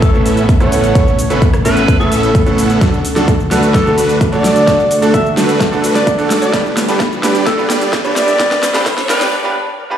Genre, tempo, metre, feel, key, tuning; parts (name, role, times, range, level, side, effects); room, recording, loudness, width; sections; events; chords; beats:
EDM, festival progressive house; 129 BPM; 4/4; straight; D major; A4 = 440 Hz
breathy alto saxophone; melody; 0.0-9.3 s; A4 to E5; -17 LUFS; equal; vintage 12-bit sampler grit, digital delay
bright baby grand piano; accompaniment; 0.0-10.0 s; G2 to B4; -18 LUFS; right 2 dB; sidechain pumping
lush unison pad; sustained chords; 0.0-9.3 s; C#3 to B4; -20 LUFS; right 1 dB; chorus, sidechain pumping
supersaw chords; riff; 0.0-9.3 s; B3 to F#5; -18 LUFS; equal; sidechain pumping, low-pass filter, digital delay
wide detuned saw bass; bass; 0.0-9.3 s; G1 to D2; -23 LUFS; equal; chorus, sidechain pumping
big-room dance drum kit; drums; 0.0-9.3 s; hi-hat, rim click, shaker, snare drum; -20 LUFS; equal; overdrive
electronic kick drum; drums; 0.0-9.0 s; -14 LUFS; equal; overdrive
riser; sound effects; 4.9-9.3 s; -25 LUFS; equal
wet digital room reverb, RT60 1.3 s, digital ambience; played on a big sound system in a bare room, large studio reverb, high-pass filter; -10 LUFS; side -9 dB against mid
0.0-10.0 A section
build-up 0.0-10.0; filter sweep on analog synth pad 0.0-10.0; filter sweep 0.0-10.0; drum fill 2.8-9.3; riser 4.9-9.3; break 9.3-10.0
0.0 Aadd9; 2.8 D; 6.5 G
0.02 0.49 | 0.95 1.42 1.88 2.35 | 2.81 3.28 3.74 4.21 | 4.67 5.14 5.61 6.07 | 6.54 7.00 7.46 7.93 | 8.39 8.86 9.33 9.79